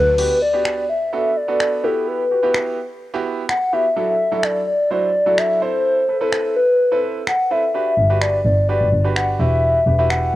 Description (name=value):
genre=dance-pop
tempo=127 BPM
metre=4/4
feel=straight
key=unclear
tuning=A4 = 441 Hz
part: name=hollow clarinet-like synth lead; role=melody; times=0.0-10.4 s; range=A4 to F#5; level=-17 LUFS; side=left 1 dB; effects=chorus, cassette tape
part: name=dark double bass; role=bass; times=0.0-0.1, 8.0-10.2 s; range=E1 to D2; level=-19 LUFS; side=equal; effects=none
part: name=clear concert grand piano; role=accompaniment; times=0.2-10.3 s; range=F#3 to C5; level=-25 LUFS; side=right 6 dB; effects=cassette tape
part: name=punchy analog drum machine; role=drums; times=0.2-10.2 s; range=crash cymbal, finger snaps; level=-24 LUFS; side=equal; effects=cassette tape
room=little or no reverb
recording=home recording on cassette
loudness=-16 LUFS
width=side -15 dB against mid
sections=0.2-10.4 A section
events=break 0.0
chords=0.2 Gmaj7; 1.8 Emadd9; 4.0 Dadd9/F#; 5.6 Amadd9; 7.7 Gmaj7; 9.4 Emadd9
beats=| 0.18 0.66 1.13 1.60 | 2.08 2.55 3.02 3.49 | 3.96 4.44 4.91 5.38 | 5.85 6.33 6.80 7.27 | 7.74 8.22 8.69 9.16 | 9.63 10.11